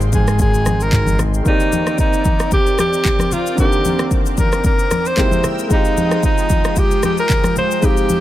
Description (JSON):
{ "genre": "amapiano", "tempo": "113 BPM", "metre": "4/4", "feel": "swing 55% on 16ths", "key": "C minor", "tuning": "A4 = 440 Hz", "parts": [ { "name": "clear concert grand piano", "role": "accompaniment", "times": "0.0-8.2 s", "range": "D3 to D5", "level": "-24 LUFS", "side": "left 1 dB", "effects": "none" }, { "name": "lush unison pad", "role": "sustained chords", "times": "0.0-8.2 s", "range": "F3 to E6", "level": "-25 LUFS", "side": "equal", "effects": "chorus, sidechain pumping" }, { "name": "fat analog bass", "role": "bass", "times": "0.0-1.4 s", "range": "Ab1", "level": "-17 LUFS", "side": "equal", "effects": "none" }, { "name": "afro-pop drum kit", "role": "drums", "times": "0.0-8.2 s", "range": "handclaps, kick drum, rim click, shaker, toms", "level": "-17 LUFS", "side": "equal", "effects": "none" }, { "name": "breathy alto saxophone", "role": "melody", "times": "0.1-8.2 s", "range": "Eb4 to C5", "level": "-19 LUFS", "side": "equal", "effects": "tape echo" }, { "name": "congas", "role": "percussion", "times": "0.1-8.2 s", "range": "none", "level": "-24 LUFS", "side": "left 2 dB", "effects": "none" } ], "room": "small room ambience", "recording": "none", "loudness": "-13 LUFS", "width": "side -14 dB against mid", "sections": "0.0-8.2 A section", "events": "none", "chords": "0.0 Abmaj7; 1.5 Cm9; 5.2 C7b13; 5.7 Fm9" }